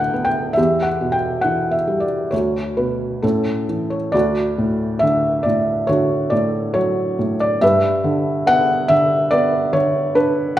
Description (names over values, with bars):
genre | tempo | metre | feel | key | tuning
classical, lyrical solo piano | 65-72 BPM | 4/4 | rubato | D major | A4 = 440 Hz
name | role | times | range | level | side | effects
felt-muted upright piano | solo | 0.0-10.6 s | D2 to G5 | -16 LUFS | equal | none
room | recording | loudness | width
moderate recital hall reverb, RT60 1.3 s | recorded in a church or concert hall | -16 LUFS | side -13 dB against mid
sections
0.0-4.1 A section; 4.1-10.6 B section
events
none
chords
0.0 D6; 0.6 Em; 2.3 Bmadd9/D; 3.2 A; 4.1 D; 7.6 G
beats
| 0.58 1.45 2.33 3.23 | 4.14 5.02 5.89 6.76 | 7.62 8.47 9.32 10.16